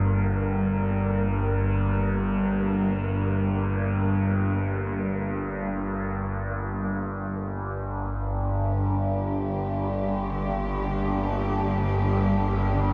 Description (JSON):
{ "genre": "dark ambient drone", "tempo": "free time", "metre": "none", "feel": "none", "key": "G minor", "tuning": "A4 = 437 Hz", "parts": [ { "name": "overtone-sweeping drone", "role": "drone", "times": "0.0-12.9 s", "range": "G1 to G2", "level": "-27 LUFS", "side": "equal", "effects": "chorus, built-in reverb, phaser" }, { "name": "wind-like tuned noise texture", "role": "texture", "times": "0.0-7.5 s", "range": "Bb3 to Bb4", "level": "-38 LUFS", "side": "equal", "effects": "built-in reverb" }, { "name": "warm chamber cello section", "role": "sustained chords", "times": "7.5-12.9 s", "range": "D3 to G4", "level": "-36 LUFS", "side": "equal", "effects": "none" } ], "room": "wet huge ambient reverb, RT60 7.3 s", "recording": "none", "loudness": "-26 LUFS", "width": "mono", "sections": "0.0-7.5 A section; 7.5-12.9 B section", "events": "fade-in on cello section 7.5-12.9", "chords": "0.0 Gm" }